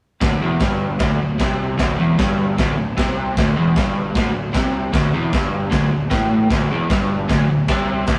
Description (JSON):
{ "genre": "garage rock duo or trio", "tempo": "153 BPM", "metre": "4/4", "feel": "straight", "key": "unclear", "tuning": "A4 = 441 Hz", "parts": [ { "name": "crunchy overdriven guitar", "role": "riff", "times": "0.2-8.2 s", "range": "D2 to C3", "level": "-21 LUFS", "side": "equal", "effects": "none" }, { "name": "fuzz picked electric bass", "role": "bass", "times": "0.2-8.2 s", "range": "D1 to C2", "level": "-28 LUFS", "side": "equal", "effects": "overdrive" }, { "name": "raw garage drum kit", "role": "drums", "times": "0.2-8.2 s", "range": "crash cymbal, kick drum, snare drum", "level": "-24 LUFS", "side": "equal", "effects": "none" } ], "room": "moderate stone room reverb, RT60 1.4 s", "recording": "rough rehearsal-room recording, tube saturation", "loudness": "-19 LUFS", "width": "mono", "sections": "0.2-8.2 A section", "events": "none", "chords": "0.2 D5", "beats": "| 0.23 0.62 1.01 1.41 | 1.80 2.19 2.59 2.98 | 3.37 3.77 4.16 4.55 | 4.94 5.34 5.73 6.12 | 6.52 6.91 7.30 7.70 | 8.09" }